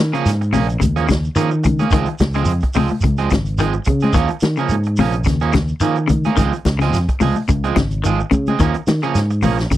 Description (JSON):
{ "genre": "afrobeat", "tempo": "108 BPM", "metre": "4/4", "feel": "swing 55% on 16ths", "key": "unclear", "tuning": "A4 = 439 Hz", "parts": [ { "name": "fingered electric bass", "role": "bass", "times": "0.0-9.8 s", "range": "Ab1 to Eb3", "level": "-19 LUFS", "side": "equal", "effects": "none" }, { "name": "congas", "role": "percussion", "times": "0.0-9.6 s", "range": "none", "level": "-20 LUFS", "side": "left 3 dB", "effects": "none" }, { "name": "clean electric guitar", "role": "arpeggios", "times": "0.1-9.8 s", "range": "C3 to Eb3", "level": "-22 LUFS", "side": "left 6 dB", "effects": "tremolo" }, { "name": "electric guitar at the edge of break-up", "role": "stabs", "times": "0.1-9.7 s", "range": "F3 to Ab4", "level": "-21 LUFS", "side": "right 8 dB", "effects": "none" }, { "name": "vintage drum kit", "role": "drums", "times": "0.1-9.8 s", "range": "hi-hat, kick drum, snare drum", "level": "-21 LUFS", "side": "equal", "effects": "none" }, { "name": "shekere", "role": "percussion", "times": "0.1-9.8 s", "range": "none", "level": "-24 LUFS", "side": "right 2 dB", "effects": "none" } ], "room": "little or no reverb", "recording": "dry, close 1970s-style studio recording", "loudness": "-15 LUFS", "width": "side -14 dB against mid", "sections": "0.0-9.8 A section", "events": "none", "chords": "0.0 Eb9sus4; 1.9 Dbmaj7; 4.2 Eb9sus4; 6.4 Dbmaj7; 8.6 Eb9sus4" }